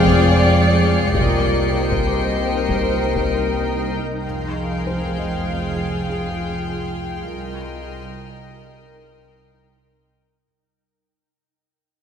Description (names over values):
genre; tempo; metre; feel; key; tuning
cinematic, suspense film score; 97 BPM; 5/4; straight; C minor; A4 = 438 Hz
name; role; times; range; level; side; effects
warm symphonic violin section; melody; 0.0-10.2 s; G5; -30 LUFS; left 3 dB; none
warm symphonic violin section; second line; 0.0-10.2 s; Ab4 to F5; -27 LUFS; left 3 dB; none
dark symphonic viola section; accompaniment; 0.0-3.9 s; C5 to D5; -24 LUFS; right 1 dB; none
mellow French horn section; sustained chords; 0.0-3.9 s; Ab3 to Ab4; -25 LUFS; left 5 dB; none
shimmering ambient pad; sustained chords; 0.0-10.4 s; Eb4 to G5; -28 LUFS; left 1 dB; chorus, built-in reverb
dark studio double bass section; bass; 0.0-10.2 s; F1 to C2; -26 LUFS; right 2 dB; none
warm studio cello section; bass; 0.0-10.2 s; C2 to F2; -26 LUFS; right 2 dB; none
deep rumbling drone; drone; 0.0-10.4 s; C2 to F2; -26 LUFS; left 1 dB; built-in reverb, phaser
felt-muted upright piano; texture; 0.0-10.4 s; C4 to D6; -30 LUFS; left 1 dB; none
warm chamber violin section; texture; 0.0-10.1 s; C6 to Db7; -33 LUFS; left 3 dB; none
taiko ensemble; drums; 0.1-3.7 s; none; -27 LUFS; left 1 dB; none
room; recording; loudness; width
wet concert hall reverb, RT60 2.5 s; none; -17 LUFS; side -8 dB against mid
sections
0.0-4.2 A section; 4.2-10.4 B section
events
fade-out 4.2-10.4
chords
0.0 Fmadd9; 1.1 Cm7; 4.2 Fmadd9; 7.3 Cm7